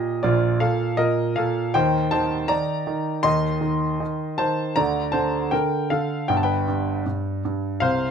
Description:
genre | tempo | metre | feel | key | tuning
classical-period piano sonatina | 79 BPM | 4/4 | straight | Bb major | A4 = 440 Hz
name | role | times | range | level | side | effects
clear grand piano | solo | 0.0-8.1 s | G1 to C6 | -20 LUFS | equal | none
room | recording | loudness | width
light reverb | none | -20 LUFS | side -7 dB against mid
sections
0.0-8.1 A section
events
none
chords
0.0 Bb5; 1.7 Cm/Eb; 3.2 Adim/Eb; 4.8 Bb/D; 6.3 G

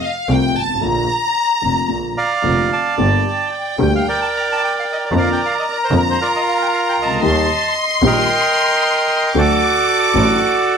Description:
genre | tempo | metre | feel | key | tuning
tango | 113 BPM | 4/4 | rubato | G minor | A4 = 442 Hz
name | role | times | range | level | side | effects
warm symphonic violin section | second line | 0.0-10.8 s | F5 to D6 | -19 LUFS | left 2 dB | none
dark concert grand piano | accompaniment | 0.3-10.4 s | F1 to A4 | -19 LUFS | left 3 dB | none
rich double bass | bass | 0.3-10.4 s | F1 to F2 | -20 LUFS | right 2 dB | none
bandoneon | melody | 2.2-10.8 s | F4 to Bb5 | -17 LUFS | right 3 dB | none
room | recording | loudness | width
moderate club reverb, RT60 0.6 s | none | -14 LUFS | side -6 dB against mid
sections
0.0-3.0 A section; 3.0-10.8 B section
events
violin section solo 0.0-3.0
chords
0.0 F; 0.8 Bb; 3.0 Gm; 5.1 Bb/F; 7.2 Eb; 9.3 D

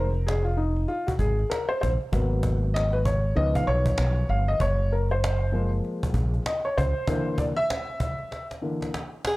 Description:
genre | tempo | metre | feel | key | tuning
hip hop, jazz-hop | 97 BPM | 4/4 | swing 60% on 16ths | F phrygian | A4 = 440 Hz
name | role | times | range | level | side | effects
dark upright piano | accompaniment | 0.0-8.9 s | D3 to F5 | -27 LUFS | left 1 dB | none
mellow fretless electric bass | bass | 0.0-6.9 s | F1 to Db2 | -24 LUFS | equal | none
cajon | drums | 0.1-9.4 s | none | -31 LUFS | equal | none
breathy alto saxophone | melody | 9.3-9.4 s | Ab4 | -22 LUFS | equal | none
room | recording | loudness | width
studio reverb | dry, gritty hardware recording | -23 LUFS | side -20 dB against mid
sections
0.0-9.4 A section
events
upright piano solo 0.0-9.4; break 7.1-9.4; drum fill 8.3-9.4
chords
0.0 Fm7; 2.1 Abm7; 3.4 Db7; 4.6 Gbmaj7; 7.1 Bb(#11)/D

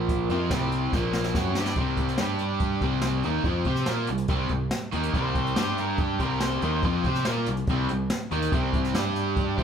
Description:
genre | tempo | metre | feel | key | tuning
classic rock | 142 BPM | 4/4 | straight | unclear | A4 = 440 Hz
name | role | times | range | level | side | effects
fingerpicked twelve-string acoustic guitar | accompaniment | 0.0-1.8, 8.5-9.6 s | Bb2 to D5 | -36 LUFS | right 2 dB | none
cranked stack guitar | riff | 0.0-9.6 s | Bb2 to C5 | -29 LUFS | right 7 dB | overdrive
overdriven semi-hollow guitar | riff | 0.0-9.6 s | Bb2 to C5 | -29 LUFS | left 6 dB | none
growling fingered electric bass | bass | 0.0-9.6 s | Bb1 to C3 | -30 LUFS | equal | overdrive
jazz brush drum kit | drums | 0.1-9.6 s | hi-hat, kick drum, snare drum | -29 LUFS | equal | none
octave-fuzz lead guitar | second line | 5.2-6.8 s | G4 to C5 | -33 LUFS | left 3 dB | distortion
room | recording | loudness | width
moderate large studio reverb, RT60 1.1 s | band playing live in one room | -23 LUFS | side -7 dB against mid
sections
0.0-1.8 A section; 1.8-9.6 B section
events
drum fill 0.9-1.8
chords
0.3 C; 0.9 Bb5; 1.4 C; 1.8 C5; 2.2 G5; 2.8 C5; 5.6 G5; 6.2 C; 9.0 G5

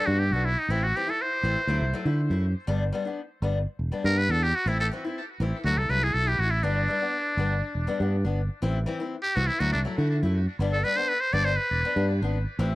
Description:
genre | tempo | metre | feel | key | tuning
highlife guitar band | 121 BPM | 4/4 | straight | G major | A4 = 440 Hz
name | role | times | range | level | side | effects
trumpet with metal mute | melody | 0.0-12.1 s | D4 to D5 | -27 LUFS | equal | cassette tape, tape echo
picked steel-string acoustic guitar | accompaniment | 0.0-12.7 s | E3 to E4 | -32 LUFS | left 4 dB | cassette tape
fingered electric bass | bass | 0.1-12.8 s | E1 to D3 | -25 LUFS | equal | none
room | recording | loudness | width
little or no reverb | home recording on cassette | -23 LUFS | side -18 dB against mid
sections
0.0-12.8 A section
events
muted trumpet solo 0.0-12.8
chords
0.0 G; 0.7 Am; 1.7 Dadd9; 2.7 G; 4.7 Am; 5.6 Dadd9 (rootless); 6.6 G; 8.6 Am; 9.6 Dadd9; 10.6 G

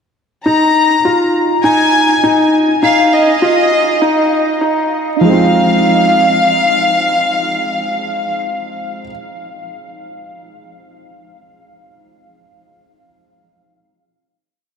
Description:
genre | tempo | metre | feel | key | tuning
electronica | 101 BPM | 4/4 | straight | unclear | A4 = 441 Hz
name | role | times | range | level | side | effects
warm chamber violin section | melody | 0.4-8.3 s | Eb5 to Bb5 | -14 LUFS | left 1 dB | analog delay
felt-muted upright piano | riff | 0.5-9.1 s | F3 to F4 | -14 LUFS | equal | analog delay
room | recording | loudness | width
wet huge ambient reverb, RT60 8.6 s | dreamy mix soaked in reverb, high-pass filter | -10 LUFS | side -6 dB against mid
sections
0.5-5.2 build; 5.2-7.6 final chord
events
build-up 0.5-5.2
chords
0.5 Ebsus2; 5.2 Fm

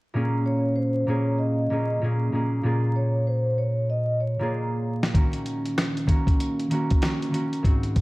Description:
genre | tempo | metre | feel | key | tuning
hip hop, boom-bap hip-hop | 96 BPM | 4/4 | swing 61% on 16ths | Bb minor | A4 = 439 Hz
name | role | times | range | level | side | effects
concert harp | accompaniment | 0.1-8.0 s | Ab2 to Ab4 | -24 LUFS | equal | cassette tape, high-pass filter, low-pass filter
vibraphone with soft mallets | melody | 0.5-4.5 s | C5 to Eb5 | -29 LUFS | equal | high-pass filter, low-pass filter
dusty soul sampler-style drum kit | drums | 5.0-8.0 s | hi-hat, kick drum, snare drum | -22 LUFS | equal | none
room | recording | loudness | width
light reverb, small room ambience | dark, warm production, vinyl crackle | -22 LUFS | side -21 dB against mid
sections
0.1-8.0 A section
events
drum fill 4.5-5.1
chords
0.1 Bbm7; 5.1 Ebm7

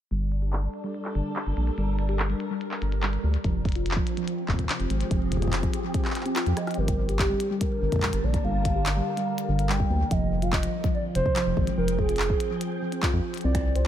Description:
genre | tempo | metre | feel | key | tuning
IDM | 144 BPM | 4/4 | straight | G minor | A4 = 443 Hz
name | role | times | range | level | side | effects
soft string machine | sustained chords | 0.1-13.9 s | C3 to A5 | -33 LUFS | equal | phaser, ensemble chorus
harp-like synth pluck | arpeggios | 0.1-13.8 s | C3 to C5 | -32 LUFS | right 1 dB | chorus
round analog bass | bass | 0.1-13.9 s | F1 to F2 | -26 LUFS | equal | none
glitchy drum kit | drums | 0.1-13.8 s | finger snaps, handclaps, hi-hat, rim click | -32 LUFS | equal | low-pass filter on hats, small room ambience, low-pass filter on snare, ping-pong delay
electronic kick drum | drums | 3.4-13.6 s | none | -28 LUFS | equal | small room ambience
warbly nostalgic lead | melody | 6.6-13.8 s | G4 to G5 | -30 LUFS | right 1 dB | lush chorus, digital delay
room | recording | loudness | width
light reverb | none | -24 LUFS | side -11 dB against mid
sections
0.1-6.8 A section; 6.8-13.9 B section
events
filter sweep on drum 0.1-6.8; filter sweep on analog synth bass 0.1-6.8; filter sweep on synth pluck 0.1-6.8; drum fill 6.6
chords
0.1 Gmadd9; 3.4 Fmadd9; 6.8 Gm9; 10.1 Fm9

